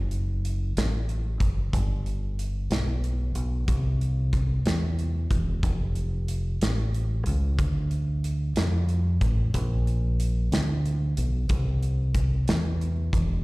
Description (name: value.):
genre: slow gospel.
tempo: 61 BPM (dotted quarters).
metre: 6/8.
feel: straight.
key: unclear.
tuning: A4 = 440 Hz.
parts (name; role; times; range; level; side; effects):
deep dub fingered electric bass; bass; 0.0-13.4 s; E1 to F2; -25 LUFS; equal; none.
modern studio drum kit; drums; 0.1-13.3 s; hi-hat, kick drum, snare drum; -28 LUFS; equal; none.
room: little or no reverb.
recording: live gig heard through the venue's PA, recital hall reverb.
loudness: -24 LUFS.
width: side -22 dB against mid.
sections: 0.0-13.4 A section.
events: none.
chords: none.